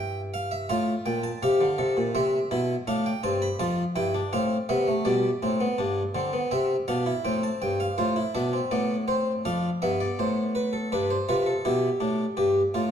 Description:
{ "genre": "classical, baroque-style 3-part fugue for harpsichord", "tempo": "82 BPM", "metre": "4/4", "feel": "straight", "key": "F major", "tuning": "A4 = 440 Hz", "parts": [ { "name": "harpsichord", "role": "solo", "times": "0.0-12.9 s", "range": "F2 to B5", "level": "-23 LUFS", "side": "equal", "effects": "none" } ], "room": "wet recital hall reverb, RT60 1.3 s", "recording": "dark, warm production", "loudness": "-23 LUFS", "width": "side -8 dB against mid", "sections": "0.0-8.0 A section; 8.0-12.9 B section", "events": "none", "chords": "0.0 C/G (rootless); 0.7 F/A; 2.1 C; 3.6 F; 5.1 G; 6.5 C; 8.0 F/A; 9.5 Dm/F; 10.9 G", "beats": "0.70 1.42 | 2.14 2.87 3.60 4.32 | 5.05 5.78 6.51 7.25 | 7.98 8.72 9.45 10.19 | 10.92 11.65 12.38" }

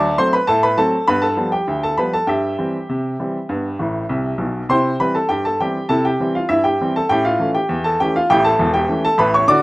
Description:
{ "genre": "ragtime piano", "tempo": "100 BPM", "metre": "2/4", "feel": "straight", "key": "C major", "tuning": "A4 = 441 Hz", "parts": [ { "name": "clear upright piano", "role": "solo", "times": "0.0-9.6 s", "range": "E1 to D6", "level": "-15 LUFS", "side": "equal", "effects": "none" } ], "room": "small room ambience", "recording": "rough home demo mix", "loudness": "-16 LUFS", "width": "side -20 dB against mid", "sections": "0.0-9.6 A section", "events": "upright piano fill 3.8-4.7", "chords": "0.0 D7; 1.1 G7; 2.3 C/G; 3.5 G; 4.7 C; 7.1 A7", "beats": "0.49 | 1.09 1.69 | 2.29 2.89 | 3.49 4.09 | 4.70 5.30 | 5.90 6.49 | 7.09 7.69 | 8.28 8.88 | 9.48" }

